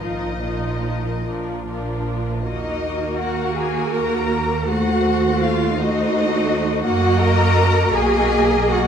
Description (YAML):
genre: classical, slow romantic movement for string orchestra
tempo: 47-57 BPM (dotted quarters)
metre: 6/8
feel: rubato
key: Eb minor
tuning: A4 = 439 Hz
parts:
  - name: warm studio violin section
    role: melody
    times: 0.0-8.9 s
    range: Bb4 to Eb5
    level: -29 LUFS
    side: left 8 dB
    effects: none
  - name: rich studio violin section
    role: second line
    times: 0.0-8.9 s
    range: F4 to Bb5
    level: -25 LUFS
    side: left 5 dB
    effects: none
  - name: rich studio viola section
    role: accompaniment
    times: 0.0-8.9 s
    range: F3 to Ab4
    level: -22 LUFS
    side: equal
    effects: none
  - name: rich studio cello section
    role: bass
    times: 0.0-8.9 s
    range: Bb2 to Bb4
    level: -23 LUFS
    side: right 3 dB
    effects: none
  - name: rich studio double bass section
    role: bass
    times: 0.0-8.9 s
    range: Bb1 to Gb2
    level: -23 LUFS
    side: right 2 dB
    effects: none
room: moderate concert hall reverb, RT60 1.9 s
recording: dark, warm production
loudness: -17 LUFS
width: side -8 dB against mid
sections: 0.0-2.5 A section; 2.5-8.9 B section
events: none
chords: 0.0 Bbsus4; 1.3 Bb; 2.5 Ebm; 4.7 Ebdim7; 6.9 Ebm/Gb; 7.9 Bmaj7